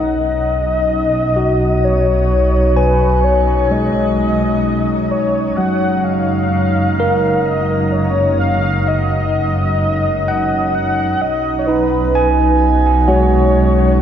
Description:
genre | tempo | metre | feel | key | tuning
ambient | 64 BPM | 3/4 | straight | unclear | A4 = 445 Hz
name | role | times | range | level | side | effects
warm velvety synth lead | melody | 0.0-14.0 s | B4 to F#5 | -18 LUFS | left 2 dB | chorus, shimmer reverb, dub echo
overdriven tine electric piano | arpeggios | 0.0-14.0 s | F#3 to G#5 | -18 LUFS | right 2 dB | phaser, shimmer reverb, dub echo
dark studio double bass section | bass | 0.0-14.0 s | F#1 to B1 | -18 LUFS | equal | none
overtone-sweeping drone | drone | 0.1-14.0 s | F#3 to C#4 | -27 LUFS | left 1 dB | chorus, built-in reverb
glass harmonica | texture | 0.0-14.0 s | D#4 to D#5 | -24 LUFS | equal | shimmer reverb
room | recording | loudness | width
wet echo chamber reverb, RT60 2.4 s | echo-heavy mix | -13 LUFS | side -9 dB against mid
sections
0.0-14.0 A section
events
fade-in on synth drone 0.0-14.0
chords
0.0 B69; 5.6 F#6; 11.2 B69

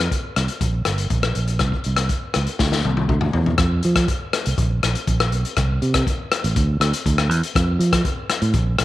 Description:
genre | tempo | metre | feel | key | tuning
highlife guitar band | 121 BPM | 4/4 | straight | F major | A4 = 440 Hz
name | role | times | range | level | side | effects
fingered electric bass | bass | 0.0-8.8 s | G1 to F3 | -20 LUFS | right 1 dB | none
crunchy breakbeat drum kit | drums | 0.0-8.8 s | hi-hat, kick drum, rim click, snare drum, toms | -21 LUFS | left 2 dB | none
room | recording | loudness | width
light reverb | 1960s-style stereo | -18 LUFS | side -15 dB against mid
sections
0.0-3.6 A section; 3.6-8.8 B section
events
drum fill 2.6-3.6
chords
none

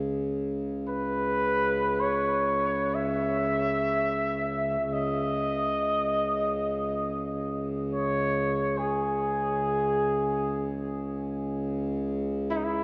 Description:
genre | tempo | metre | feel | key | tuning
world meditative, free-time meditation music | free time | none | none | C# minor | A4 = 439 Hz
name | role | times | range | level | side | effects
hand-pumped harmonium | drone | 0.0-12.8 s | C#2 to C#3 | -32 LUFS | equal | none
breathy trumpet | melody | 0.9-12.8 s | D#4 to E5 | -30 LUFS | equal | tape echo
room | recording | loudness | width
wet cathedral reverb, RT60 4.7 s | dark, warm production | -28 LUFS | mono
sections
0.0-12.8 A section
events
none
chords
none

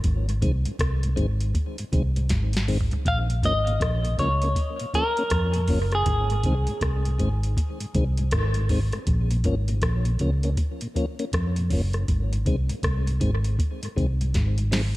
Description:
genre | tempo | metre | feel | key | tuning
dub reggae | 80 BPM | 4/4 | swing 62% on 16ths | unclear | A4 = 440 Hz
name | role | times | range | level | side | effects
vintage muted fingered electric bass | bass | 0.0-14.9 s | Gb1 to F2 | -23 LUFS | equal | none
soft vintage rhythm box | drums | 0.0-15.0 s | hi-hat, kick drum, rim click, snare drum, toms | -27 LUFS | equal | overdrive
mellow tonewheel organ | accompaniment | 0.3-14.8 s | Ab2 to Db4 | -31 LUFS | left 2 dB | slow rotary speaker, tape echo
clean electric guitar | melody | 3.1-7.4 s | Ab4 to F5 | -26 LUFS | equal | dub echo
congas | percussion | 6.1-6.3 s | none | -37 LUFS | right 5 dB | none
room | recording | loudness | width
light reverb, digital ambience | none | -22 LUFS | side -18 dB against mid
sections
0.0-15.0 A section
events
break 0.0-6.1; drum fill 2.3-3.0, 14.3-15.0; part muted 6.1-15.0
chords
0.0 Ab; 3.0 Bbm; 6.1 Ab; 9.1 Bbm; 12.1 Ab

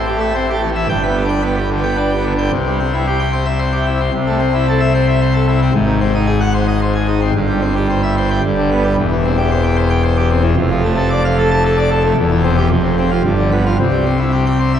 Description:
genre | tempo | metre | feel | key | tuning
classical, organ toccata | 112 BPM | 3/4 | straight | C major | A4 = 440 Hz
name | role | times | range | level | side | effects
pipe organ, full organ | solo | 0.0-14.8 s | E1 to A5 | -13 LUFS | equal | none
room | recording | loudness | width
wet church reverb, RT60 3.0 s | dark, warm production | -13 LUFS | side -9 dB against mid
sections
0.0-2.5 A section; 2.5-14.8 B section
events
none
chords
0.0 Am7; 0.9 G; 2.5 C; 4.2 Am/C; 5.7 Ab7; 7.3 C/G; 8.4 G; 9.0 C/E; 10.6 Dm/F; 12.2 C/E; 12.7 F5; 13.2 G7; 13.8 C

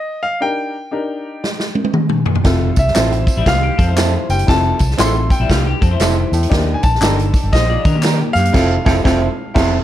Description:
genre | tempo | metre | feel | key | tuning
uptempo 1960s-style soul | 118 BPM | 4/4 | swing 63% on 8ths | F major | A4 = 441 Hz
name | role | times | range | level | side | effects
clear grand piano | melody | 0.0-9.8 s | Eb5 to C6 | -21 LUFS | left 1 dB | none
warm upright piano | accompaniment | 0.4-9.8 s | C4 to C5 | -22 LUFS | left 2 dB | none
swinging big-band drum kit | drums | 1.4-9.8 s | crash cymbal, hi-hat, kick drum, snare drum, toms | -16 LUFS | equal | none
warm baritone saxophone | riff | 2.4-9.7 s | Eb2 to A2 | -24 LUFS | right 3 dB | none
vintage muted fingered electric bass | bass | 2.4-9.8 s | F1 to Eb3 | -17 LUFS | equal | none
tambourine and handclaps | percussion | 2.5-8.4 s | none | -28 LUFS | left 1 dB | none
electric guitar through a small old amp | stabs | 2.9-9.8 s | C4 to Bb4 | -23 LUFS | right 8 dB | spring reverb
electric guitar through a small old amp | riff | 3.4-9.8 s | G3 to D5 | -23 LUFS | left 6 dB | lush chorus
room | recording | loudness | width
light reverb, small room ambience | dark, warm production | -13 LUFS | side -12 dB against mid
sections
0.0-9.8 A section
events
drum fill 1.4-2.4; band accent 8.5-9.8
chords
0.0 Ebmaj7; 2.4 Fmaj7; 6.5 Ebmaj7; 8.5 Fmaj7

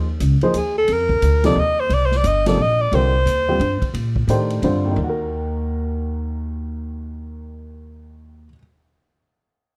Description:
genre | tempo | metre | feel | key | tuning
modal jazz | 176 BPM | 3/4 | swing 63% on 8ths | Eb dorian | A4 = 436 Hz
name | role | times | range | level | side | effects
dark baby grand piano | accompaniment | 0.0-8.6 s | Eb2 to C5 | -25 LUFS | equal | none
upright bass | bass | 0.0-8.5 s | G1 to Bb2 | -24 LUFS | equal | none
swinging big-band drum kit | drums | 0.2-4.7 s | hi-hat, kick drum, ride cymbal, snare drum | -32 LUFS | equal | none
clear alto saxophone | melody | 0.6-4.0 s | Ab4 to Eb5 | -21 LUFS | equal | none
room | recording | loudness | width
light reverb | dark, warm production | -19 LUFS | mono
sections
0.0-5.0 A section; 5.0-7.0 B section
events
alto saxophone solo 0.0-5.0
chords
0.0 Eb9sus4; 0.9 F9sus4; 5.0 Ebm

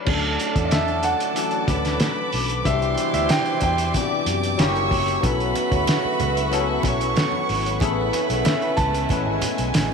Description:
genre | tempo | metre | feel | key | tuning
lush 1970s-style soul | 93 BPM | 4/4 | straight | unclear | A4 = 440 Hz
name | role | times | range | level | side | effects
barky tine electric piano | accompaniment | 0.0-9.9 s | C3 to B4 | -27 LUFS | left 13 dB | overdrive, analog chorus
warm studio violin section | second line | 0.1-9.9 s | G#3 to D6 | -27 LUFS | right 2 dB | none
dark studio string section | sustained chords | 0.1-9.9 s | F#4 to E6 | -31 LUFS | left 1 dB | none
mellow horn section | stabs | 0.1-9.9 s | A2 to G4 | -28 LUFS | right 13 dB | none
vintage muted fingered electric bass | bass | 0.1-9.9 s | F#1 to F#2 | -27 LUFS | equal | none
cloth-damped thuddy drum kit | drums | 0.1-9.9 s | crash cymbal, hi-hat, kick drum, snare drum | -24 LUFS | right 1 dB | none
clear grand piano | melody | 0.7-9.4 s | D#5 to A5 | -27 LUFS | left 1 dB | tape echo
congas | percussion | 5.2-9.9 s | none | -33 LUFS | right 9 dB | none
room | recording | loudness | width
light reverb, small room ambience | 1960s-style stereo with parts hard left and right | -19 LUFS | side -5 dB against mid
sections
0.1-9.9 A section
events
none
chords
0.1 Dmaj7; 2.7 Cmaj9; 4.6 F#7b9; 5.2 B9sus4; 7.8 Amaj9

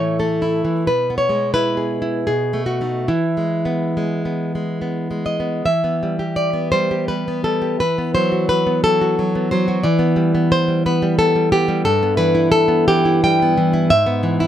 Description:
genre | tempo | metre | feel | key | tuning
romantic piece for solo classical guitar | 69-92 BPM | 3/4 | rubato | E major, E minor from 5.7 s | A4 = 440 Hz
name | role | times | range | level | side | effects
nylon-string guitar | solo | 0.0-14.5 s | G2 to G5 | -16 LUFS | equal | none
room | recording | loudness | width
little or no reverb | close, detailed microphones | -16 LUFS | side -10 dB against mid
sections
0.0-5.7 A section; 5.7-14.5 B section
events
none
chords
0.0 A; 0.9 E/B; 2.3 B7; 3.1 E; 5.7 Em; 7.8 B5/E; 9.8 Em; 11.9 Em/G; 13.9 E/G#

